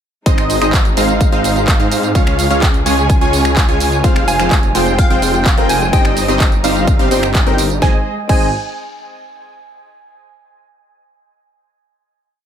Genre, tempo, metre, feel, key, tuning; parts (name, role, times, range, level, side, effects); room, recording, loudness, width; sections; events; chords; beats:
EDM, festival progressive house; 127 BPM; 4/4; straight; Ab major; A4 = 440 Hz
dark chamber string section; sustained chords; 0.3-8.0 s; Db3 to Eb5; -25 LUFS; equal
wide unison lead; arpeggios; 0.3-8.5 s; Eb5 to Ab5; -22 LUFS; right 1 dB; sidechain pumping, dub echo
supersaw stab; riff; 0.3-8.5 s; G3 to Ab5; -18 LUFS; right 1 dB; sidechain pumping, dub echo
wide detuned saw bass; bass; 0.3-8.5 s; F1 to Ab2; -19 LUFS; equal; chorus, sidechain pumping
big-room dance drum kit; drums; 0.3-8.4 s; crash cymbal, finger snaps, handclaps, hi-hat, snare drum, tambourine; -21 LUFS; right 2 dB; studio reverb
electronic kick drum; drums; 0.3-8.4 s; -14 LUFS; equal; studio reverb
warm grand piano; accompaniment; 4.0-8.5 s; C4 to C5; -23 LUFS; left 4 dB; sidechain pumping, dub echo
glassy wavetable pluck; melody; 4.3-8.5 s; F5 to Ab5; -21 LUFS; right 2 dB; chorus, dub echo
little or no reverb; -11 LUFS; side -9 dB against mid
0.3-7.8 drop; 7.8-9.7 final chord
drop 0.3-7.8
0.3 Ab; 2.2 Db; 4.0 Fm; 5.9 Cm/G; 7.8 Ab
| 0.26 0.73 1.21 1.68 | 2.15 2.62 3.10 3.57 | 4.04 4.51 4.99 5.46 | 5.93 6.40 6.88 7.35 | 7.82 8.29